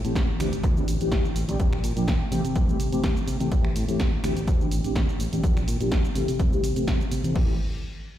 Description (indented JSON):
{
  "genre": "filtered disco house",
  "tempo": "125 BPM",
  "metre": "4/4",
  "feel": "swing 54% on 16ths",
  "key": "A minor",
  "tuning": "A4 = 439 Hz",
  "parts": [
    { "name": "mellow synth brass", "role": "accompaniment", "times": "0.0-7.5 s", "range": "E3 to G4", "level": "-29 LUFS", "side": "left 1 dB", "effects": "chorus, phaser, sidechain pumping, low-pass filter" },
    { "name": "fingered electric bass", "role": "bass", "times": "0.0-7.6 s", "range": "A1 to C3", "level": "-29 LUFS", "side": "equal", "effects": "sidechain pumping, low-pass filter" },
    { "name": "punchy analog drum machine", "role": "drums", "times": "0.0-7.5 s", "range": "crash cymbal, finger snaps, hi-hat, shaker, snare drum", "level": "-33 LUFS", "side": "right 1 dB", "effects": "sidechain pumping on hats, sidechain pumping on perc, sidechain pumping on cymbals" },
    { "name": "maracas and congas", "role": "percussion", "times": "0.0-7.3 s", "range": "none", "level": "-37 LUFS", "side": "equal", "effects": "none" },
    { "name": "electronic kick drum", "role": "drums", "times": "0.2-7.5 s", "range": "none", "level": "-25 LUFS", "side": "equal", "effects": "none" }
  ],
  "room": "light reverb",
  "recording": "played on a big sound system in a bare room, large studio reverb",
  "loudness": "-22 LUFS",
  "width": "side -12 dB against mid",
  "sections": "0.0-7.4 A section",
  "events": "filter sweep 0.0-7.4",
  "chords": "0.4 D9sus4; 1.6 Bb6; 2.3 C6; 3.5 Am7; 4.2 D9sus4; 5.4 Bb6; 6.2 C6; 7.4 Am7",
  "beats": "0.16 0.64 1.12 | 1.60 2.08 2.56 3.04 | 3.52 4.00 4.48 4.96 | 5.44 5.92 6.40 6.88 | 7.36"
}